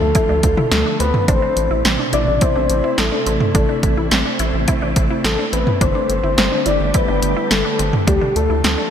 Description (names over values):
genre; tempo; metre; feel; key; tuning
synth-pop; 106 BPM; 4/4; straight; A minor; A4 = 440 Hz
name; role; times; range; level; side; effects
soft octave-layered synth lead; melody; 0.0-8.9 s; G4 to D5; -20 LUFS; left 3 dB; chorus, tremolo, shimmer reverb, ping-pong delay
soft string machine; sustained chords; 0.0-8.9 s; B2 to G4; -24 LUFS; right 1 dB; ensemble chorus, shimmer reverb
rubbery square bass; bass; 0.0-8.8 s; G1 to D2; -21 LUFS; equal; none
punchy analog drum machine; drums; 0.1-8.8 s; hi-hat, kick drum, snare drum, toms; -18 LUFS; right 1 dB; overdrive, gated reverb
resonant blip pluck; arpeggios; 0.2-8.9 s; C4 to E4; -26 LUFS; right 2 dB; phaser, shimmer reverb, ping-pong delay
room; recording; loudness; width
moderate lush hall reverb, RT60 2.6 s; bright 1980s-style digital production; -14 LUFS; side -8 dB against mid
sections
0.0-8.9 A section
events
none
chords
0.0 Dm; 1.3 Amadd9; 5.8 Gsus2; 8.1 Dm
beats
0.15 0.72 | 1.28 1.85 2.42 2.98 | 3.55 4.11 4.68 5.25 | 5.81 6.38 6.94 7.51 | 8.07 8.64